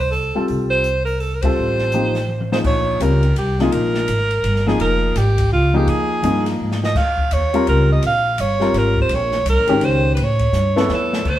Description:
modal jazz; 167 BPM; 3/4; swing 63% on 8ths; Bb dorian; A4 = 440 Hz
breathy alto saxophone; melody; 0.0-11.4 s; F4 to F5; -20 LUFS; right 2 dB
upright bass; bass; 0.0-11.4 s; F1 to A2; -20 LUFS; equal
open jazz drum kit; drums; 0.0-11.4 s; crash cymbal, hi-hat, kick drum, ride cymbal, snare drum, toms; -26 LUFS; left 1 dB
warm upright piano; accompaniment; 0.4-11.2 s; Eb3 to C#5; -20 LUFS; left 2 dB
moderate stone room reverb, RT60 1.0 s; band playing live in one room; -15 LUFS; side -13 dB against mid
0.0-2.6 A section; 2.6-11.3 B section
band accent 1.4; drum fill 2.3-2.6, 6.6-7.0, 10.5-11.3
0.0 F/C; 2.6 Bbm7; 10.2 A7b13

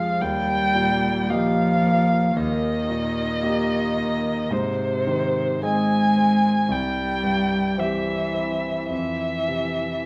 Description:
classical, slow romantic movement for piano trio; 52-57 BPM; 4/4; rubato; A4 = 440 Hz
muted violin; melody; 0.0-10.1 s; C5 to Ab5; -26 LUFS; equal
muted cello; second line; 0.0-10.1 s; C3 to Ab3; -27 LUFS; equal
warm concert grand piano; accompaniment; 0.0-10.1 s; C2 to E5; -28 LUFS; equal
wet stone room reverb, RT60 1.1 s; -22 LUFS; mono
0.0-10.1 A section
0.2 Eb; 4.5 Ab; 6.7 C; 8.9 F5

